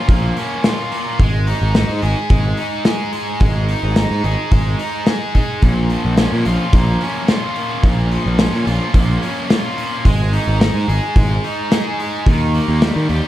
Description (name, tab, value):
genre	indie rock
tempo	108 BPM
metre	4/4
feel	straight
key	unclear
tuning	A4 = 440 Hz
part	scooped high-gain guitar	riff	0.0-13.3 s	Bb2 to Ab4	-20 LUFS	equal	distortion
part	fuzz picked electric bass	bass	0.1-13.2 s	Ab1 to Eb3	-17 LUFS	equal	overdrive
part	loose indie drum kit	drums	0.1-13.2 s	hi-hat, kick drum, snare drum	-16 LUFS	equal	none
room	moderate studio ambience, RT60 0.5 s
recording	dark, warm production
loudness	-14 LUFS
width	side -14 dB against mid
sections	0.0-13.3 A section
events	none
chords	0.0 Bbm; 1.2 Ab5; 5.6 Bbm; 10.1 Ab5; 12.3 Eb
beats	0.09 0.65 | 1.20 1.75 2.31 2.86 | 3.41 3.97 4.52 5.08 | 5.63 6.18 6.74 7.29 | 7.84 8.39 8.95 9.50 | 10.05 10.61 11.16 11.71 | 12.26 12.82